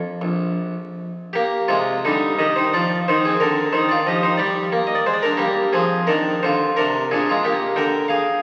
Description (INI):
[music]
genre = classical, baroque-style suite movement for harpsichord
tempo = 89 BPM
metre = 4/4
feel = rubato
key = unclear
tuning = A4 = 441 Hz
[part]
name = harpsichord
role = solo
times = 0.0-8.4 s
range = Bb1 to G5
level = -20 LUFS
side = equal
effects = none
[sound]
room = wet church reverb, RT60 3.0 s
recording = very old 78 rpm record, vinyl crackle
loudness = -20 LUFS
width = mono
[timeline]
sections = 0.0-1.7 A section; 1.7-8.4 B section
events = none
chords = 0.0 Bb5; 1.7 Cm; 4.4 Gm; 5.7 F5; 7.1 Bb7